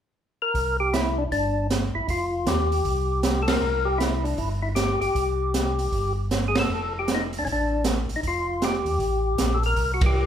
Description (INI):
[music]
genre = soul jazz organ trio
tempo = 156 BPM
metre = 4/4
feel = swing 64% on 8ths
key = unclear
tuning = A4 = 440 Hz
[part]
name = percussive tonewheel organ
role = melody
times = 0.4-10.3 s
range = Db4 to Bb4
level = -25 LUFS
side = left 2 dB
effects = slow rotary speaker, overdrive
[part]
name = mellow tonewheel organ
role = bass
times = 0.5-10.3 s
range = F1 to Eb2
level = -27 LUFS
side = equal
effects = slow rotary speaker
[part]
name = open jazz drum kit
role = drums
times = 0.5-10.1 s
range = hi-hat, kick drum, ride cymbal, snare drum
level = -26 LUFS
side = right 2 dB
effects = none
[sound]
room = moderate large studio reverb, RT60 0.9 s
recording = band playing live in one room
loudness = -22 LUFS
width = side -9 dB against mid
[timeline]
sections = 0.5-10.3 A section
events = band accent 3.4, 6.5, 10.0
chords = 0.0 N.C.; 0.5 Csus2; 2.1 Fsus2; 3.6 C5; 6.7 Fadd9